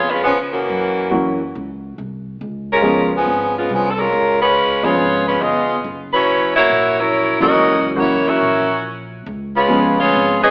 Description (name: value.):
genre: jazz, big band swing.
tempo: 140 BPM.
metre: 4/4.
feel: swing 66% on 8ths.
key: Db mixolydian.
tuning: A4 = 440 Hz.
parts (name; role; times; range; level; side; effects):
mellow saxophone section; melody; 0.0-10.5 s; Fb3 to Fb5; -17 LUFS; equal; none.
upright bass; bass; 0.0-10.5 s; Gb1 to Db3; -31 LUFS; equal; none.
warm baby grand piano; accompaniment; 1.1-10.4 s; Fb3 to Ab4; -22 LUFS; equal; none.
room: wet scoring stage reverb, RT60 1.6 s.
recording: AM radio sound, faint mains hum.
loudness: -17 LUFS.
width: mono.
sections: 0.0-10.5 A section.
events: none.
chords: 0.0 Db7; 0.7 Gb7; 2.4 Db7; 5.8 Gb7; 9.3 Db7.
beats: 0.26 | 0.69 1.12 1.55 1.98 | 2.41 2.84 3.27 3.69 | 4.12 4.55 4.98 5.41 | 5.84 6.27 6.70 7.13 | 7.55 7.99 8.41 8.84 | 9.27 9.70 10.13.